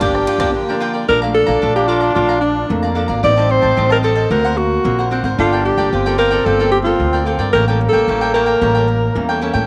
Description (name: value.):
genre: samba and choro.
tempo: 112 BPM.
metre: 4/4.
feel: straight.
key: Bb major.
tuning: A4 = 441 Hz.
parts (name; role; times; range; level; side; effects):
mellow alto saxophone; melody; 0.0-9.4 s; D4 to D5; -18 LUFS; equal; none.
breathy trombone; second line; 0.0-9.7 s; Bb3 to D4; -23 LUFS; equal; none.
cavaquinho; accompaniment; 0.0-9.7 s; D4 to Bb5; -25 LUFS; equal; none.
nylon-string guitar; accompaniment; 0.0-9.7 s; F2 to A4; -28 LUFS; equal; none.
upright bass; bass; 0.0-9.7 s; G1 to A2; -22 LUFS; equal; none.
techno drum kit; drums; 0.0-0.5 s; kick drum, ride cymbal, rim click; -29 LUFS; equal; none.
room: moderate echo chamber reverb, RT60 2.3 s.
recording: none.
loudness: -15 LUFS.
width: mono.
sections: 0.0-1.1 A section; 1.1-9.7 B section.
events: break 0.5-1.1.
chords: 0.0 Gm7; 1.1 Bbmaj7; 3.2 Am7b5; 4.3 Daug7; 5.4 Gm9; 7.5 A7b9.